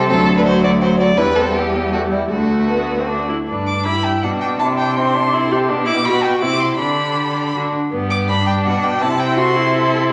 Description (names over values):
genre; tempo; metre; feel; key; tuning
quick classical-period movement for string quartet; 150-169 BPM; 3/4; rubato; G major; A4 = 438 Hz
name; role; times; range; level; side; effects
rich violin; second line; 0.0-10.1 s; E4 to D5; -25 LUFS; equal; none
warm viola; accompaniment; 0.0-10.1 s; F#3 to G4; -21 LUFS; equal; none
clear cello; bass; 0.0-10.1 s; D2 to D3; -22 LUFS; equal; none
warm violin; melody; 0.1-9.9 s; G3 to D6; -23 LUFS; equal; none
room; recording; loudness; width
wet recital hall reverb, RT60 1.3 s; none; -17 LUFS; mono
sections
0.0-3.5 A section; 3.5-10.1 B section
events
none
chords
0.1 D; 1.2 Em; 2.3 D; 3.5 G; 4.6 C; 5.7 G/B; 6.4 C; 6.8 G/D; 7.9 G; 9.0 C